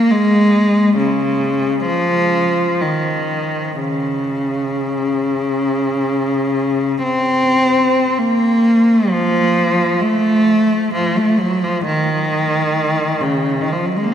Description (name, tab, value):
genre	classical, free, expressive piece for unaccompanied cello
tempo	46-70 BPM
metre	4/4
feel	rubato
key	unclear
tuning	A4 = 438 Hz
part	rich cello	solo	0.0-14.1 s	Db3 to C4	-14 LUFS	equal	none
room	wet cathedral reverb, RT60 5.2 s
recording	none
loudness	-14 LUFS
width	side -9 dB against mid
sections	0.0-8.2 A section; 8.2-14.1 A section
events	none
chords	none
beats	| 0.11 0.97 1.84 2.77 | 3.79 4.85 5.88 7.05 | 8.20 9.12 10.03 10.97 | 11.87 12.78 13.65